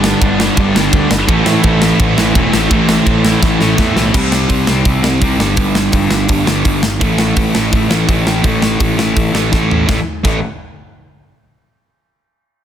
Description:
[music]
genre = punk rock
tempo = 167 BPM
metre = 4/4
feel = straight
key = A minor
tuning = A4 = 441 Hz
[part]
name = heavy high-gain guitar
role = riff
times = 0.0-4.1 s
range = G2 to E4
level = -19 LUFS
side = right 1 dB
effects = distortion
[part]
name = sludgy distorted guitar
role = riff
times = 0.0-10.4 s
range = G2 to C4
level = -16 LUFS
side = left 6 dB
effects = overdrive
[part]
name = sludgy distorted guitar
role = riff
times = 0.0-10.4 s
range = G2 to C4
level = -18 LUFS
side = right 12 dB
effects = overdrive
[part]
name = fuzz picked electric bass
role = bass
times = 0.0-10.4 s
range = E1 to A2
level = -18 LUFS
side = equal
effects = overdrive
[part]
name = tight metal drum kit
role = drums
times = 0.0-10.3 s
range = crash cymbal, hi-hat, kick drum, ride cymbal, snare drum, toms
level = -15 LUFS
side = equal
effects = none
[sound]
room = light reverb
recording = dense, heavily limited modern master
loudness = -10 LUFS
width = side -10 dB against mid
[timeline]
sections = 0.0-4.1 A section; 4.1-9.9 B section; 9.9-11.3 C section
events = drum fill 3.4-4.1, 9.5-9.9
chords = 0.0 G; 1.3 Am; 4.1 C5; 5.4 G5; 7.0 A5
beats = 0.21 0.56 0.92 | 1.28 1.63 1.99 2.35 | 2.70 3.06 3.42 3.77 | 4.13 4.49 4.85 5.21 | 5.57 5.92 6.28 6.64 | 7.00 7.36 7.72 8.08 | 8.44 8.80 9.15 9.51 | 9.87 10.23

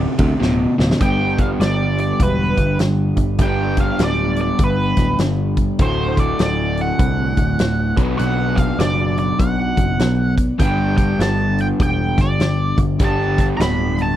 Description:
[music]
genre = blues rock power trio and southern rock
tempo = 100 BPM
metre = 4/4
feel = swing 63% on 8ths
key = unclear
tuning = A4 = 441 Hz
[part]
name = crunchy overdriven guitar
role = riff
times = 0.0-14.2 s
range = D2 to B4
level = -20 LUFS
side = equal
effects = none
[part]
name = picked electric bass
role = bass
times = 0.0-14.1 s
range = D1 to D2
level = -20 LUFS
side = equal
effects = none
[part]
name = huge arena drum kit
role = drums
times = 0.2-14.1 s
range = hi-hat, kick drum, ride cymbal, snare drum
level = -20 LUFS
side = equal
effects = none
[part]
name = octave-fuzz lead guitar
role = melody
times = 1.0-14.2 s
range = B4 to B5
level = -23 LUFS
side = right 1 dB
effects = wah, distortion
[sound]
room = little or no reverb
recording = dry, close 1970s-style studio recording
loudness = -15 LUFS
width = side -12 dB against mid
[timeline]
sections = 0.0-1.0 A section; 1.0-14.2 B section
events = drum fill 0.4-1.0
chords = 0.0 N.C.; 1.0 G; 5.8 D; 7.9 Bm; 10.6 G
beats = 0.41 | 1.01 1.61 2.20 2.80 | 3.40 4.00 4.60 5.20 | 5.80 6.39 7.00 7.59 | 8.20 8.80 9.40 10.00 | 10.60 11.20 11.80 12.40 | 13.01 13.61

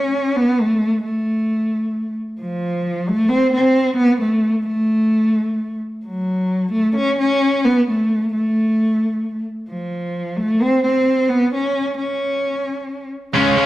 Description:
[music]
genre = rock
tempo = 132 BPM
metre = 4/4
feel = straight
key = unclear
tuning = A4 = 441 Hz
[part]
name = dark cello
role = melody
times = 0.0-13.7 s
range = E#3 to C#4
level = -16 LUFS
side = equal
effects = none
[part]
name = high-gain distorted guitar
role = riff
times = 13.3-13.7 s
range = C#3 to C#4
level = -13 LUFS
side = equal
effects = distortion
[sound]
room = wet stone room reverb, RT60 1.2 s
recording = rough rehearsal-room recording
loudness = -16 LUFS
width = side -15 dB against mid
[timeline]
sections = 0.0-13.3 A section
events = none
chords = none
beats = 0.13 | 0.58 1.04 1.49 1.95 | 2.40 2.85 3.31 3.76 | 4.21 4.67 5.12 5.58 | 6.04 6.49 6.95 7.40 | 7.86 8.32 8.77 9.23 | 9.69 10.15 10.60 11.06 | 11.52 11.97 12.43 12.89 | 13.34

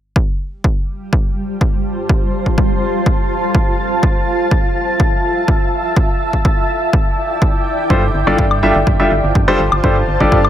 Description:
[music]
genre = piano house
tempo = 124 BPM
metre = 4/4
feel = straight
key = unclear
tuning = A4 = 440 Hz
[part]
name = electronic kick drum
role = drums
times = 0.2-10.4 s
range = none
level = -15 LUFS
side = equal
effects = none
[part]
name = granular cloud pad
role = texture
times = 1.0-10.5 s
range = G3 to A5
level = -18 LUFS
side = equal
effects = built-in reverb, sidechain pumping
[part]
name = clear concert grand piano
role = riff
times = 7.9-10.4 s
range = G3 to E5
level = -14 LUFS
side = equal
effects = sidechain pumping, tape echo
[part]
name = organ-like FM bass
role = bass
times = 7.9-10.5 s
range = G1 to G2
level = -18 LUFS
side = equal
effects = sidechain pumping
[part]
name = woodblock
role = drums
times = 8.5-10.5 s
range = none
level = -19 LUFS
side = left 4 dB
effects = none
[sound]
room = light reverb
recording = none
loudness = -13 LUFS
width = side -11 dB against mid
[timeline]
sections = 0.2-10.5 A section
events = none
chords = 0.2 G9sus4; 3.8 Fmaj7; 6.0 Em7; 7.9 G9sus4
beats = | 0.16 0.64 1.13 1.61 | 2.10 2.58 3.06 3.55 | 4.03 4.51 5.00 5.48 | 5.97 6.45 6.93 7.42 | 7.90 8.38 8.87 9.35 | 9.84 10.32

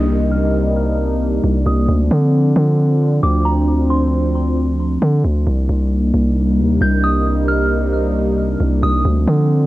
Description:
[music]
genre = hip hop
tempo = 134 BPM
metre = 4/4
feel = half-time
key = C minor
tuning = A4 = 440 Hz
[part]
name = delicate synth tine bell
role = melody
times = 0.0-4.1, 6.8-9.0 s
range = Bb5 to G6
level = -24 LUFS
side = right 1 dB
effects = chorus, low-pass filter, cassette tape, tape echo
[part]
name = sweeping resonant pad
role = sustained chords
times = 0.0-9.7 s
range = C3 to Eb4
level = -18 LUFS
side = equal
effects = lush chorus, low-pass filter, cassette tape
[part]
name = long sustained 808-style bass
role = bass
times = 0.0-9.7 s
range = C2 to D3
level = -16 LUFS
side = equal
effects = none
[part]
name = downlifter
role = sound effects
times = 0.0-1.9 s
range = none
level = -36 LUFS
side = equal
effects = none
[sound]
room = light reverb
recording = home recording on cassette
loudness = -14 LUFS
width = side -16 dB against mid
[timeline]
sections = 0.0-9.7 A section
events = filter sweep 0.0-9.7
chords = 0.0 Cm7; 1.9 Dm7; 5.5 Cm7; 9.1 Bbadd9/D (rootless)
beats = | 0.10 0.54 0.99 1.44 | 1.89 2.33 2.78 3.23 | 3.68 4.12 4.57 5.02 | 5.47 5.92 6.36 6.81 | 7.26 7.71 8.15 8.60 | 9.05 9.50

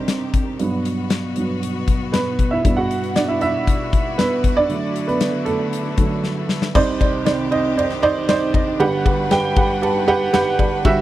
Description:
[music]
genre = piano-driven pop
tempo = 117 BPM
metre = 4/4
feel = straight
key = G major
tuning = A4 = 440 Hz
[part]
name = dark upright piano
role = accompaniment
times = 0.0-11.0 s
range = G1 to B5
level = -18 LUFS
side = right 3 dB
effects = none
[part]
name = bright studio string section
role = sustained chords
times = 0.0-11.0 s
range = B2 to B4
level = -29 LUFS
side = left 5 dB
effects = none
[part]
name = huge arena drum kit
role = drums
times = 0.1-11.0 s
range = crash cymbal, hi-hat, kick drum, ride cymbal, snare drum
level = -20 LUFS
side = left 2 dB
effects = none
[sound]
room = light reverb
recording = dry, close 1970s-style studio recording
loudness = -16 LUFS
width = side -14 dB against mid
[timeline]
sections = 0.0-6.8 A section; 6.8-11.0 B section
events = upright piano solo 0.0-6.8; drum fill 6.2-6.8; upright piano fill 9.3-10.8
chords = 0.0 Cmadd9; 0.6 Gmaj7; 2.6 Emadd9/G; 4.7 Dadd9; 6.8 Cmadd9; 8.8 Gmaj7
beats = 0.08 | 0.60 1.11 1.62 2.14 | 2.65 3.16 3.67 4.19 | 4.70 5.21 5.73 6.24 | 6.75 7.26 7.78 8.29 | 8.80 9.31 9.82 10.34 | 10.85

